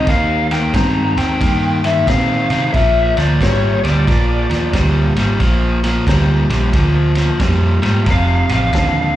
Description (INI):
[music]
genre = electric blues shuffle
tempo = 90 BPM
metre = 4/4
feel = swing 64% on 8ths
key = Bb mixolydian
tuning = A4 = 440 Hz
[part]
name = lead guitar through a small cranked amp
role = melody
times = 0.0-9.2 s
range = Db5 to Bb5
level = -19 LUFS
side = left 1 dB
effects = overdrive, slapback echo
[part]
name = overdriven electric guitar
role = riff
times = 0.0-9.1 s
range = F2 to C4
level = -18 LUFS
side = left 1 dB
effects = slapback echo
[part]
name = vintage muted fingered electric bass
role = bass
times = 0.0-9.1 s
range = F1 to C3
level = -16 LUFS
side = right 1 dB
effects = none
[part]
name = vintage drum kit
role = drums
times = 0.1-8.9 s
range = kick drum, ride cymbal, snare drum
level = -21 LUFS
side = right 1 dB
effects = none
[sound]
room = little or no reverb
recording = live gig heard through the venue's PA, club reverb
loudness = -12 LUFS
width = side -13 dB against mid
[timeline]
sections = 0.0-9.2 A section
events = none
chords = 0.0 Eb; 2.7 Bb; 8.1 F